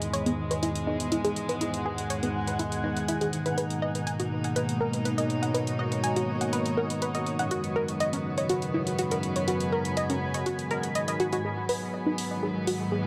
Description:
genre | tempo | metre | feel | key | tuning
melodic techno | 122 BPM | 4/4 | straight | unclear | A4 = 439 Hz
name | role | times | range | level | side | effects
rich studio string section | sustained chords | 0.0-13.1 s | E2 to D#4 | -34 LUFS | equal | low-pass filter
analog drone | drone | 0.0-13.1 s | G#2 to D#3 | -36 LUFS | equal | chorus
electronic hi-hat | drums | 0.0-12.8 s | none | -39 LUFS | equal | none
granular cloud pad | texture | 0.0-13.1 s | F#4 to B5 | -38 LUFS | equal | built-in reverb
unison pluck | arpeggios | 0.1-13.1 s | B3 to G#5 | -33 LUFS | equal | dub echo
riser | sound effects | 12.4-13.1 s | none | -44 LUFS | equal | none
room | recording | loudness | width
light reverb | echo-heavy mix | -29 LUFS | mono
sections
0.0-11.4 A section; 11.4-13.1 B section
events
filter sweep on synth arpeggio sound 0.0-11.4, 11.4-13.1; filter sweep on string section 0.0-11.4; build-up 11.4-13.1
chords
0.0 E; 3.6 Bmaj7; 7.5 F#sus4; 11.4 G#m7

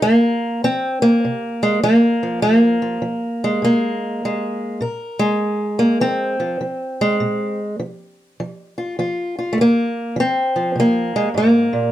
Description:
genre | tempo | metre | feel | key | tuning
acoustic country blues, solo or duo | 101 BPM | 4/4 | swing 65% on 8ths | F minor | A4 = 440 Hz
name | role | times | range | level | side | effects
fingerpicked old ladder-braced acoustic guitar | solo | 0.0-11.9 s | F2 to Bb4 | -16 LUFS | equal | none
room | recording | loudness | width
moderate studio reverb, RT60 0.5 s | dark, warm production | -16 LUFS | side -13 dB against mid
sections
0.0-11.9 A section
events
none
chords
0.0 Fm; 4.8 Bb5; 9.6 Fm

